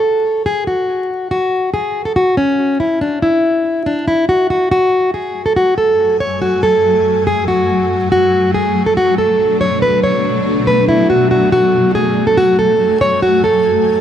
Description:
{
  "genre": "hip hop",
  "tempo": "141 BPM",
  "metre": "4/4",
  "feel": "half-time",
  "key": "F# minor",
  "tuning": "A4 = 440 Hz",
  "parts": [
    { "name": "fingerpicked plugged-in steel-string acoustic guitar", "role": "melody", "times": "0.0-14.0 s", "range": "C#4 to C#5", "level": "-12 LUFS", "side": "equal", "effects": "digital delay" },
    { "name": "granular cloud pad", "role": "sustained chords", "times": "5.6-14.0 s", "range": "F#2 to G#5", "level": "-17 LUFS", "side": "equal", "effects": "built-in reverb" }
  ],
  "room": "moderate recital hall reverb, RT60 1.6 s",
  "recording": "dark, warm production, vinyl crackle",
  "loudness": "-12 LUFS",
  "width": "side -9 dB against mid",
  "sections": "0.0-4.7 A section; 4.7-14.0 B section",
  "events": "none",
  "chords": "0.0 N.C.; 4.7 F#madd9; 8.1 Bm7; 11.5 F#madd9"
}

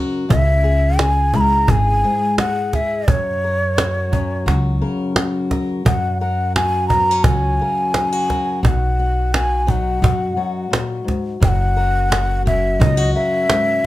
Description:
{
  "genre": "acoustic folk duo or small band",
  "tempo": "86 BPM",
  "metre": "4/4",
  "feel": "straight",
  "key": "unclear",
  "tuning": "A4 = 439 Hz",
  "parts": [
    { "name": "fingerpicked steel-string acoustic guitar", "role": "accompaniment", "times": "0.0-13.9 s", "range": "F#2 to A#4", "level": "-23 LUFS", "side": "left 3 dB", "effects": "none" },
    { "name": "breathy hollow bansuri", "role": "melody", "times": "0.3-13.9 s", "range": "C#5 to B5", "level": "-19 LUFS", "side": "equal", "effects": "none" },
    { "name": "upright bass", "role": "bass", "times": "0.3-13.1 s", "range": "F#1 to F#2", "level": "-19 LUFS", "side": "equal", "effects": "none" },
    { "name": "cajon", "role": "percussion", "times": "0.3-13.7 s", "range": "none", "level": "-18 LUFS", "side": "right 1 dB", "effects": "none" }
  ],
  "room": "light reverb",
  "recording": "close, detailed microphones",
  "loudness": "-15 LUFS",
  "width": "side -15 dB against mid",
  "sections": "0.0-13.9 A section",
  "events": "none",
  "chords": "0.3 C#m; 3.1 F#; 8.6 B; 11.4 F#"
}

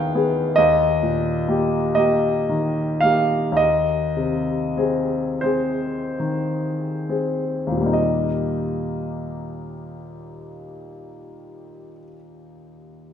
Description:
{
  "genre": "classical, romantic nocturne for solo piano",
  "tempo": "20-48 BPM (dotted quarters)",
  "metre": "6/8",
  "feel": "rubato",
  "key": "Eb major",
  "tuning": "A4 = 440 Hz",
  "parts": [
    { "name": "warm grand piano", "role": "solo", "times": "0.0-13.1 s", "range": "Eb2 to G5", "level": "-20 LUFS", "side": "left 1 dB", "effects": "none" }
  ],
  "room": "wet recital hall reverb, RT60 1.7 s",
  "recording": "none",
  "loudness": "-19 LUFS",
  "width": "side -8 dB against mid",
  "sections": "0.0-8.0 A section; 8.0-12.2 B section",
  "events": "slowing down 0.0-8.0",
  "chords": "0.0 Abm/Eb; 0.6 Eb; 3.6 Ab/Eb; 8.0 Eb"
}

